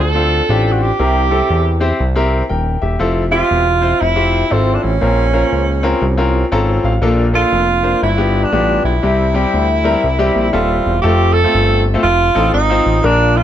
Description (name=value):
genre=uptempo gospel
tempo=119 BPM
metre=4/4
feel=swing 64% on 8ths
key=F major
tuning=A4 = 438 Hz
part: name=warm tenor saxophone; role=melody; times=0.0-13.4 s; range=C4 to A4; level=-16 LUFS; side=right 3 dB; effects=none
part: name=fat analog bass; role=bass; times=0.0-13.4 s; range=Eb1 to E2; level=-16 LUFS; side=equal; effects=none
part: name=bright concert grand piano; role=accompaniment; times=0.1-13.4 s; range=G2 to Bb5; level=-17 LUFS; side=left 2 dB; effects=none
room=light reverb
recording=none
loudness=-12 LUFS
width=side -10 dB against mid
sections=0.0-11.0 A section; 11.0-13.4 B section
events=grand piano fill 6.3-7.0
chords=0.0 Dm7; 1.0 C7; 3.0 Fmaj7; 5.0 Bbmadd9; 7.0 Bbmaj7; 8.0 G7; 9.0 C; 11.0 F; 12.0 F7